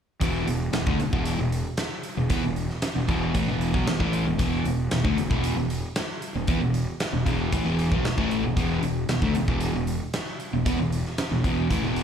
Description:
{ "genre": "classic rock", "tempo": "115 BPM", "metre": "4/4", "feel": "straight", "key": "unclear", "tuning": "A4 = 440 Hz", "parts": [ { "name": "overdriven semi-hollow guitar", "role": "riff", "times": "0.2-12.0 s", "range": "E2 to B3", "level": "-25 LUFS", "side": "equal", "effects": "slapback echo" }, { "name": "fuzz fingered electric bass", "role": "bass", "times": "0.2-12.0 s", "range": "E1 to E2", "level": "-29 LUFS", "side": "equal", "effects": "overdrive" }, { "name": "big rock drum kit", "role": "drums", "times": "0.2-12.0 s", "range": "hi-hat, kick drum, snare drum", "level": "-29 LUFS", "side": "equal", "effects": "none" } ], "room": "light reverb", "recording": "live gig heard through the venue's PA, club reverb", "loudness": "-23 LUFS", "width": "side -8 dB against mid", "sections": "0.2-12.0 A section", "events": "none", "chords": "0.2 E5" }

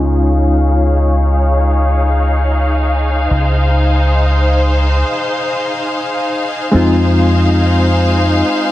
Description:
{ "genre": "trip hop", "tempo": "free time", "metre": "none", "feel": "none", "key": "unclear", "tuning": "A4 = 439 Hz", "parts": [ { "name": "bright reed electric piano", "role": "accompaniment", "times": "0.0-8.7 s", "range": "Ab3 to F4", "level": "-17 LUFS", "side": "left 1 dB", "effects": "tremolo, vintage 12-bit sampler grit, tape echo" }, { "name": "clear studio string section", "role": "sustained chords", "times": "0.0-8.7 s", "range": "Eb4 to F5", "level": "-16 LUFS", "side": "left 1 dB", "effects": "low-pass filter" }, { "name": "deep dub fingered electric bass", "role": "bass", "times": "0.0-8.4 s", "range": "Db2 to F2", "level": "-13 LUFS", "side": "equal", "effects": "none" }, { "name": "wind-like tuned noise texture", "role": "texture", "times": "0.0-5.0 s", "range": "Ab4", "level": "-35 LUFS", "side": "right 2 dB", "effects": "none" } ], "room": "light reverb, digital ambience", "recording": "vinyl crackle, low-pass filter", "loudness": "-11 LUFS", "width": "side -14 dB against mid", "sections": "0.0-6.7 A section; 6.7-8.7 B section", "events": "filter sweep on string section 0.0-6.7; filter sweep 0.0-6.7; break 5.0-6.7", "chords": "0.0 Dbadd9; 6.7 Fm7" }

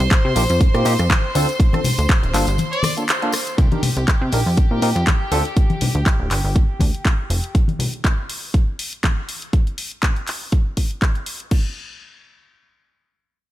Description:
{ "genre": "filtered disco house", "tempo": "121 BPM", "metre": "4/4", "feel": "swing 55% on 16ths", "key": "C dorian", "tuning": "A4 = 440 Hz", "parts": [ { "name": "clear studio violin section", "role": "sustained chords", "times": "0.0-7.6 s", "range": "G4 to C6", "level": "-26 LUFS", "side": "equal", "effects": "sidechain pumping, low-pass filter" }, { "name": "plucky analog bass", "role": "bass", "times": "0.0-7.4 s", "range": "D1 to C3", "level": "-19 LUFS", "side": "equal", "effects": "sidechain pumping, low-pass filter" }, { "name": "house drum kit", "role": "drums", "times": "0.0-11.6 s", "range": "crash cymbal, handclaps, hi-hat, rim click", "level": "-24 LUFS", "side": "left 1 dB", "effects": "sidechain pumping on hats, studio reverb, sidechain pumping on cymbals" }, { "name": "electronic kick drum", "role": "drums", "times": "0.1-11.6 s", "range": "none", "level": "-16 LUFS", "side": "equal", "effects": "studio reverb" }, { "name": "tambourine and congas", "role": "percussion", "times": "0.1-9.5 s", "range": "none", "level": "-26 LUFS", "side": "left 3 dB", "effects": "sidechain pumping on perc, low-pass filter on perc" }, { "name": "barky tine electric piano", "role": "accompaniment", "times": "0.4-5.4 s", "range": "Bb3 to Bb4", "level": "-25 LUFS", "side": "equal", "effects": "phaser, sidechain pumping, low-pass filter" }, { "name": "clear trumpet section", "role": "melody", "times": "2.7-2.9 s", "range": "D5", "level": "-27 LUFS", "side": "left 1 dB", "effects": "vintage 12-bit sampler grit, sidechain pumping, low-pass filter, tape echo" } ], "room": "little or no reverb", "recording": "none", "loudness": "-16 LUFS", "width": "side -14 dB against mid", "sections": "0.0-3.6 A section; 3.6-11.5 B section; 11.5-13.5 C section", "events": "drop 0.0-3.6; break 2.6-3.6; band accent 3.1", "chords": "0.0 C7(no3); 0.6 F9sus4; 1.3 Dm7; 2.3 Gm7; 3.6 Cm7; 4.6 F9sus4; 5.3 N.C.; 6.3 G5; 7.5 N.C." }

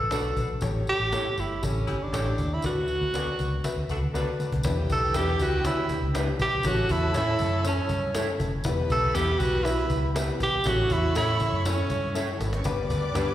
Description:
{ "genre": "uptempo 1960s-style soul", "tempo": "120 BPM", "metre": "4/4", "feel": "straight", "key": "E dorian", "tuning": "A4 = 439 Hz", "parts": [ { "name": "warm tenor saxophone", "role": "melody", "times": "0.0-12.4 s", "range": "C#4 to A4", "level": "-27 LUFS", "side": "right 2 dB", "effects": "slapback echo" }, { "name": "vintage muted fingered electric bass", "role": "bass", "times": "0.0-13.3 s", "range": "E1 to A2", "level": "-28 LUFS", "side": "equal", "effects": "none" }, { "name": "clear saxophone section", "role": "second line", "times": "0.1-13.3 s", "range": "C#4 to D5", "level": "-37 LUFS", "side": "left 1 dB", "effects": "slapback echo" }, { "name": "warm upright piano", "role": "accompaniment", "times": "0.1-13.3 s", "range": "G2 to E5", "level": "-33 LUFS", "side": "left 6 dB", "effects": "slapback echo" }, { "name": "electric guitar through a small old amp", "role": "stabs", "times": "0.1-13.3 s", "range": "A3 to E5", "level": "-36 LUFS", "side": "right 6 dB", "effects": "slapback echo" }, { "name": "cajon", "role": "drums", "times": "0.1-13.3 s", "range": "none", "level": "-33 LUFS", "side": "equal", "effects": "slapback echo" }, { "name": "tambourine", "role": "percussion", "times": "0.1-13.3 s", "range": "none", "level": "-43 LUFS", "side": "left 2 dB", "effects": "none" }, { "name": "warm studio violin section", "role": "second line", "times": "4.6-13.3 s", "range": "E4 to D6", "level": "-38 LUFS", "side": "equal", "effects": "slapback echo" } ], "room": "light reverb, small room ambience", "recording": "live gig heard through the venue's PA, recital hall reverb", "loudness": "-23 LUFS", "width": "side -12 dB against mid", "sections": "0.0-4.6 A section; 4.6-13.3 B section", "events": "drum fill 4.1-4.6, 12.2-12.7", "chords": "0.0 Bm7; 0.6 A7; 2.6 D6; 4.6 Em7; 6.6 A; 8.6 Em; 10.7 A; 12.7 G" }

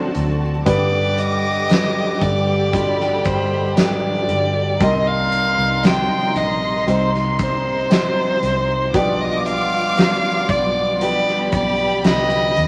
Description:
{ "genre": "pop ballad", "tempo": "58 BPM", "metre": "4/4", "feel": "straight", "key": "unclear", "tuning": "A4 = 440 Hz", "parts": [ { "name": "warm violin", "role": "melody", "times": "0.0-12.7 s", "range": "C5 to G5", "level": "-23 LUFS", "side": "equal", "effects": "none" }, { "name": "rich studio violin section", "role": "second line", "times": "0.0-12.7 s", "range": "A5 to D6", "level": "-30 LUFS", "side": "equal", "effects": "none" }, { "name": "warm upright piano", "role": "accompaniment", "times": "0.0-12.7 s", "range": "G2 to D5", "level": "-26 LUFS", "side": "equal", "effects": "none" }, { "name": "warm studio string section", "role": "sustained chords", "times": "0.0-12.7 s", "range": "C3 to G4", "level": "-28 LUFS", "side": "equal", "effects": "none" }, { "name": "vintage muted fingered electric bass", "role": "bass", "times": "0.0-12.7 s", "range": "G1 to Eb2", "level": "-27 LUFS", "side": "equal", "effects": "none" }, { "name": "huge arena drum kit", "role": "drums", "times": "0.1-12.7 s", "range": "hi-hat, kick drum, snare drum", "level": "-24 LUFS", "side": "equal", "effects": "none" }, { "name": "tambourine", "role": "percussion", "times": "1.7-12.3 s", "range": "none", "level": "-42 LUFS", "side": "equal", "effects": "none" } ], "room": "wet studio reverb, RT60 0.5 s", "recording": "vinyl crackle", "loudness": "-18 LUFS", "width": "mono", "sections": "0.0-12.7 A section", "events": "none", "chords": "0.0 D7; 0.7 G; 4.8 Cm7; 8.9 G7/B" }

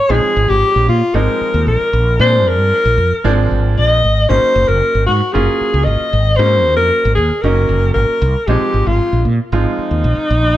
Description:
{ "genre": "electric jazz fusion", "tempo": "115 BPM", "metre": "4/4", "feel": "straight", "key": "unclear", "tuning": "A4 = 438 Hz", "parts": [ { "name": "mellow alto saxophone", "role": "melody", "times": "0.0-10.6 s", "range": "Eb4 to Eb5", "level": "-15 LUFS", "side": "left 1 dB", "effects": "plate reverb" }, { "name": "bright baby grand piano", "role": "accompaniment", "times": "0.1-10.2 s", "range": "F3 to F4", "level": "-21 LUFS", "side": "right 3 dB", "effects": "none" }, { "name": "mellow fretless electric bass", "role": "bass", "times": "0.1-10.5 s", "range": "Gb1 to Bb2", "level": "-15 LUFS", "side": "equal", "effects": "wide subtle chorus" } ], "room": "light reverb", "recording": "none", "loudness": "-11 LUFS", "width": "side -14 dB against mid", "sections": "0.0-10.6 A section", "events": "none", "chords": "0.1 Bb9sus4; 4.3 Ab9sus4; 8.5 Bb9sus4" }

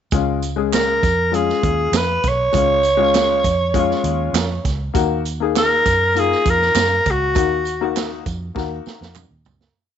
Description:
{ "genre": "uptempo 1960s-style soul", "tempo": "100 BPM", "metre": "4/4", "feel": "straight", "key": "Db mixolydian", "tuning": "A4 = 439 Hz", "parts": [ { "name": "warm upright piano", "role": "accompaniment", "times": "0.1-9.2 s", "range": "Ab3 to Ab4", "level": "-22 LUFS", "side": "left 12 dB", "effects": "none" }, { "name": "vintage muted fingered electric bass", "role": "bass", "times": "0.1-9.7 s", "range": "Cb2 to Gb2", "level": "-24 LUFS", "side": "right 1 dB", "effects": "none" }, { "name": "swinging big-band drum kit", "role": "drums", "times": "0.1-9.7 s", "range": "hi-hat, kick drum, snare drum, toms", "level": "-23 LUFS", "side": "right 4 dB", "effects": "none" }, { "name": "tambourine and handclaps", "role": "percussion", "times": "0.1-9.6 s", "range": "none", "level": "-31 LUFS", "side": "right 15 dB", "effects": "none" }, { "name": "raspy alto saxophone", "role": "melody", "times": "0.7-8.0 s", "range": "Gb4 to Db5", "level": "-17 LUFS", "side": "right 1 dB", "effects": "none" } ], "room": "light reverb, small room ambience", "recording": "1960s-style stereo with parts hard left and right, nothing above 7.8 kHz", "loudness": "-15 LUFS", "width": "side -9 dB against mid", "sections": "0.1-9.8 verse", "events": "fade-out 7.4-9.8; drum fill 8.6-9.8", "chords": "0.1 Db; 5.0 Ebm" }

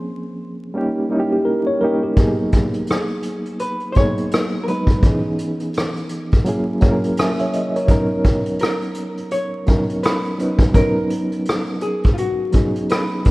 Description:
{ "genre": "lo-fi hip hop", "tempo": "84 BPM", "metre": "4/4", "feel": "swing 61% on 16ths", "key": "B major", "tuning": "A4 = 442 Hz", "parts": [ { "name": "reed electric piano", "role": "accompaniment", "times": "0.0-13.3 s", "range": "E3 to G#5", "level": "-21 LUFS", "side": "right 1 dB", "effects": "fast tremolo, cassette tape, low-pass filter" }, { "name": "tine electric piano", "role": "second line", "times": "1.3-2.4 s", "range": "G4 to C#5", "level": "-21 LUFS", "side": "equal", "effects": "medium stereo tremolo, low-pass filter, tape echo" }, { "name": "vintage brush drum kit", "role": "drums", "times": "2.2-13.3 s", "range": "hi-hat, kick drum, rim click", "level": "-18 LUFS", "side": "equal", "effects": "none" }, { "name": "hollow-body jazz guitar", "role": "melody", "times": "2.9-13.3 s", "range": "E#4 to C#5", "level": "-25 LUFS", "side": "left 1 dB", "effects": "low-pass filter" } ], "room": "light reverb, small room ambience", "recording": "rough home demo mix, vinyl crackle", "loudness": "-17 LUFS", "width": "side -21 dB against mid", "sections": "0.0-13.3 A section", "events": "none", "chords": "0.0 A#m7; 0.7 D#7; 2.2 G#m7; 5.0 C#m7; 6.5 F#7; 7.9 Bmaj9" }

